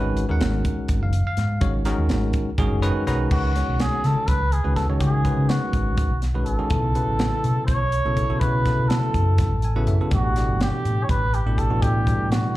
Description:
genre	electric jazz fusion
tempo	247 BPM (eighths)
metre	7/8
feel	straight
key	C# minor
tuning	A4 = 441 Hz
part	bell-like tine electric piano	accompaniment	0.0-12.6 s	B2 to A#5	-26 LUFS	equal	medium stereo tremolo
part	fingered electric bass	bass	0.0-12.4 s	F#1 to C#3	-22 LUFS	equal	none
part	crisp fusion drum kit	drums	0.2-12.4 s	crash cymbal, hi-hat, kick drum, snare drum	-25 LUFS	equal	none
part	trumpet with cup mute	melody	3.3-12.6 s	F#4 to C#5	-26 LUFS	right 1 dB	slapback echo
room	little or no reverb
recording	live gig heard through the venue's PA, club reverb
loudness	-19 LUFS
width	side -16 dB against mid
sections	0.0-3.3 A section; 3.3-12.6 B section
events	tine electric piano fill 2.6-3.3, 9.4-10.1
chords	0.0 G#m9; 3.3 C#9sus4; 6.7 B9sus4; 10.1 A9sus4

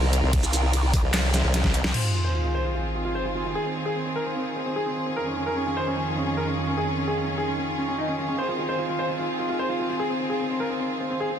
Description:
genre	heavy wobble dubstep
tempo	149 BPM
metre	4/4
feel	half-time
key	F minor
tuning	A4 = 440 Hz
part	clear chamber string section	sustained chords	0.0-11.4 s	F2 to Bb4	-28 LUFS	right 1 dB	sidechain pumping, low-pass filter
part	formant-sweep wobble bass	bass	0.0-1.8 s	C2	-22 LUFS	equal	chorus, overdrive
part	dubstep drum kit	drums	0.1-2.0 s	crash cymbal, handclaps, hi-hat, ride cymbal, shaker, snare drum	-27 LUFS	equal	overdrive
part	electronic kick drum	drums	0.3-1.7 s	none	-23 LUFS	equal	none
part	growl bass	bass	0.4-1.9 s	C2	-23 LUFS	equal	chorus, overdrive
part	warm grand piano	melody	1.9-11.4 s	C4 to C5	-27 LUFS	equal	ping-pong delay
part	sub drop	sound effects	1.9-3.6 s	none	-27 LUFS	equal	none
room	moderate lush hall reverb, RT60 2.0 s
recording	dense, heavily limited modern master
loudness	-23 LUFS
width	side -8 dB against mid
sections	0.0-1.9 A section; 1.9-11.4 B section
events	drop 0.0-1.9; drum fill 1.5-1.9; impact 1.9-3.6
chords	0.0 Cm7; 1.9 Fm7; 5.2 Dbadd9/F; 8.4 Fm7

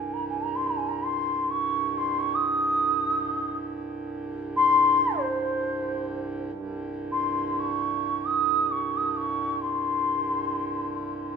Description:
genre	indian classical, Hindustani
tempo	free time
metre	none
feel	none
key	C raga bhairavi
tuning	A4 = 439 Hz
part	bansuri	melody	0.0-11.4 s	C5 to Eb6+22c	-24 LUFS	equal	none
part	hand-pumped harmonium	drone	0.0-11.4 s	C2 to G2	-32 LUFS	right 3 dB	none
room	wet recital hall reverb, RT60 1.6 s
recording	minimal, uncompressed stereo recording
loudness	-24 LUFS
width	side -6 dB against mid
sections	0.0-6.5 A section; 6.5-11.4 A section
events	none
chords	none

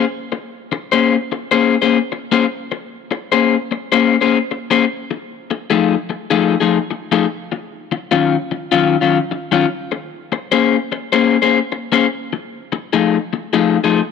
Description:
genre	blues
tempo	100 BPM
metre	4/4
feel	swing 68% on 8ths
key	Bb minor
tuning	A4 = 440 Hz
part	electric guitar through a small old amp	solo	0.0-14.0 s	Eb3 to C5	-15 LUFS	left 7 dB	none
room	light reverb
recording	none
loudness	-14 LUFS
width	side -6 dB against mid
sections	0.0-14.1 A section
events	none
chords	0.0 Bbm9; 4.9 F7#9; 7.3 Ebm9; 9.7 Bbm9; 12.1 F7#9

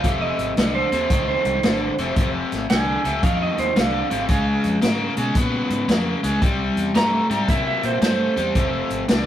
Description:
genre	electric blues shuffle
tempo	113 BPM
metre	4/4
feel	swing 66% on 8ths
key	F minor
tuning	A4 = 443 Hz
part	electric slide guitar	second line	0.0-9.1 s	C5 to Bb5	-24 LUFS	right 4 dB	none
part	biting overdriven guitar	riff	0.0-9.3 s	F2 to Cb4	-22 LUFS	left 2 dB	none
part	vintage muted fingered electric bass	bass	0.0-9.3 s	F1 to C3	-28 LUFS	equal	none
part	vintage drum kit	drums	0.0-9.3 s	hi-hat, kick drum, snare drum	-22 LUFS	equal	none
room	moderate small room reverb, RT60 0.5 s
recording	rough rehearsal-room recording, warm saturation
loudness	-18 LUFS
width	side -11 dB against mid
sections	0.0-9.3 A section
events	electric slide guitar solo 0.0-9.3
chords	0.0 Fm7; 4.3 Db7; 6.4 C7; 8.5 Fm

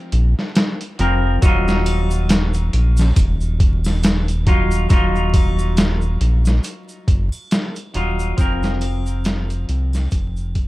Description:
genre	trip hop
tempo	69 BPM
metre	4/4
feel	swing 58% on 16ths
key	unclear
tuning	A4 = 442 Hz
part	clean electric guitar	accompaniment	0.0-10.7 s	F3 to Bb4	-24 LUFS	left 1 dB	harmonic tremolo, tape echo
part	round analog bass	bass	0.1-10.7 s	Eb1 to C2	-18 LUFS	equal	none
part	trip hop sampler-style drum kit	drums	0.1-10.7 s	hi-hat, kick drum, snare drum	-18 LUFS	equal	none
part	tube shaker and triangle	percussion	1.4-10.5 s	none	-38 LUFS	right 3 dB	none
room	little or no reverb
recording	dark, warm production, vinyl crackle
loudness	-16 LUFS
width	side -18 dB against mid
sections	0.0-10.7 A section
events	fade-out 6.1-10.7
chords	0.0 Fsus4; 1.4 Ebmadd9; 8.4 Fsus4

